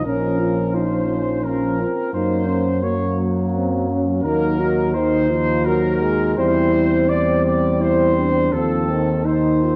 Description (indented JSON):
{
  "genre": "classical, hymn-like piece for brass band",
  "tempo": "84 BPM",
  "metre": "3/4",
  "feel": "rubato",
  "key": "unclear",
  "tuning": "A4 = 439 Hz",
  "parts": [
    { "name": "dark trumpet section", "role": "melody", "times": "0.0-9.8 s", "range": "A4 to D5", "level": "-25 LUFS", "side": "equal", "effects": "none" },
    { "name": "mellow French horn section", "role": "second line", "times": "0.0-9.8 s", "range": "Bb3 to Eb4", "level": "-28 LUFS", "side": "equal", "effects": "none" },
    { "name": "dark euphonium", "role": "accompaniment", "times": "0.0-9.8 s", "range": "Bb3 to Gb4", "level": "-25 LUFS", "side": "equal", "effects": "none" },
    { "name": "warm trombone", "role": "accompaniment", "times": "0.0-9.8 s", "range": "Eb3 to Ab3", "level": "-28 LUFS", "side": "equal", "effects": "none" },
    { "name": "dark tuba", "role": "bass", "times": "0.1-9.8 s", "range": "Bb1 to Gb2", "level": "-25 LUFS", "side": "equal", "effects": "none" }
  ],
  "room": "moderate concert hall reverb, RT60 1.9 s",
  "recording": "worn, warbling old tape, cassette tape, warbly pitch drift",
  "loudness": "-19 LUFS",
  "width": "mono",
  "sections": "0.0-9.8 A section",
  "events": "none",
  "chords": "0.0 Bbm; 2.1 Gb; 4.2 Cm7b5/Eb; 6.4 C/E; 8.5 F7/Eb",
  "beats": "| 0.05 0.75 1.45 | 2.14 2.83 3.53 | 4.24 4.95 5.66 | 6.38 7.09 7.81 | 8.54 9.26"
}